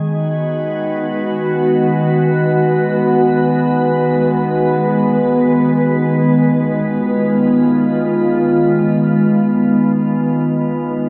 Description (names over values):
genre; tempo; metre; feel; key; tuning
ambient; free time; none; none; unclear; A4 = 440 Hz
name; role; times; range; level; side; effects
glassy FM pad; solo; 0.0-11.1 s; D#3 to B4; -15 LUFS; equal; ensemble chorus, built-in reverb
room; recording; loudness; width
wet concert hall reverb, RT60 2.5 s; none; -15 LUFS; mono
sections
0.0-11.1 A section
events
none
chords
0.0 G#m7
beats
free time